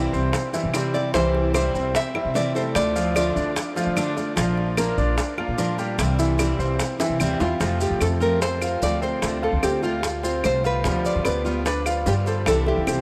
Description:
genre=latin, Cuban son and guajira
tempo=148 BPM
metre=4/4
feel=straight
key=F major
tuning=A4 = 440 Hz
part: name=fingerpicked steel-string acoustic guitar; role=accompaniment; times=0.0-13.0 s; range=C3 to F4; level=-30 LUFS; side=equal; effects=none
part: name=clear concert grand piano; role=arpeggios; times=0.0-13.0 s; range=E3 to F5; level=-29 LUFS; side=equal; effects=none
part: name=upright bass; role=bass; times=0.0-13.0 s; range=Bb1 to D3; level=-28 LUFS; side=equal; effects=none
part: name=maracas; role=percussion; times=0.1-13.0 s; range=none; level=-38 LUFS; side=equal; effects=none
part: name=bongos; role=percussion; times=0.3-13.0 s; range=none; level=-34 LUFS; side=equal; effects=none
part: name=claves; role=percussion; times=0.7-13.0 s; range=none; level=-39 LUFS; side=equal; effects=none
part: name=nylon-string guitar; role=melody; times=0.9-3.5, 7.4-13.0 s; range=F4 to E5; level=-28 LUFS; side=equal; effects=none
room=moderate huge ambient reverb, RT60 8.2 s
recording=in a vast, echoing space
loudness=-23 LUFS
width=mono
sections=0.0-7.6 A section; 7.6-13.0 B section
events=drum fill 7.0-7.6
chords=0.0 C; 2.8 Dm; 4.4 Bb; 6.0 C; 7.6 F; 9.2 Dm7; 10.8 G7/D; 12.5 C

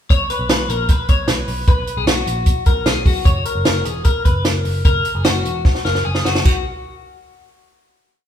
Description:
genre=jangly indie pop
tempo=151 BPM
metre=4/4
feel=straight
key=unclear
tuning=A4 = 440 Hz
part: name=twelve-string electric guitar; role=arpeggios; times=0.1-6.6 s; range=F#4 to C#5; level=-21 LUFS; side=left 4 dB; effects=spring reverb
part: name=vintage muted picked electric bass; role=bass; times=0.1-6.6 s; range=E1 to B1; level=-23 LUFS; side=equal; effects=none
part: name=compact cocktail drum kit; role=drums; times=0.1-6.5 s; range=crash cymbal, hi-hat, kick drum, snare drum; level=-16 LUFS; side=equal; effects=none
room=moderate large studio reverb, RT60 1.2 s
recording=band playing live in one room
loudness=-14 LUFS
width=side -9 dB against mid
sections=0.1-6.5 verse; 6.5-8.1 final chord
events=drum fill 5.6-6.5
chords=0.1 B5; 3.3 F#; 6.5 B5

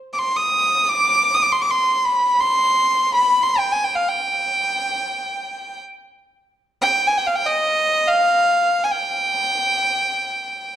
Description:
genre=Arabic maqam ensemble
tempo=free time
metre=none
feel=none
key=unclear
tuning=A4 = 440 Hz
part: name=clear violin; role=solo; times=0.1-10.8 s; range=Eb5 to Eb6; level=-17 LUFS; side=equal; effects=none
room=moderate recital hall reverb, RT60 1.5 s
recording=dark, warm production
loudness=-16 LUFS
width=side -11 dB against mid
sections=0.0-10.8 A section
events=none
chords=none

